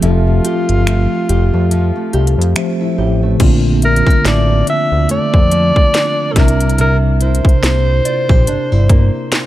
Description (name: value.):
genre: contemporary R&B.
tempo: 71 BPM.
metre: 4/4.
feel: swing 58% on 16ths.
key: unclear.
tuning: A4 = 440 Hz.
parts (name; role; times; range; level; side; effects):
mellow alto saxophone; melody; 0.0-9.5 s; F4 to E5; -18 LUFS; equal; digital delay.
mellow tine electric piano; accompaniment; 0.0-9.5 s; C3 to E5; -19 LUFS; equal; medium stereo tremolo.
nylon-string guitar; arpeggios; 0.0-9.5 s; C3 to G4; -21 LUFS; right 1 dB; none.
fat analog bass; bass; 0.0-9.1 s; F1 to F2; -13 LUFS; equal; none.
trap drum kit; drums; 0.0-9.5 s; crash cymbal, finger snaps, hi-hat, kick drum, snare drum; -13 LUFS; equal; none.
soft synth bell; texture; 3.8-9.5 s; D5 to E5; -31 LUFS; equal; none.
room: little or no reverb.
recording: dark, warm production.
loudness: -10 LUFS.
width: side -14 dB against mid.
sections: 0.0-3.4 A section; 3.4-9.5 B section.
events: break 0.0-3.4.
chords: 0.0 Fmaj9; 3.4 Bbmaj7; 6.4 C7.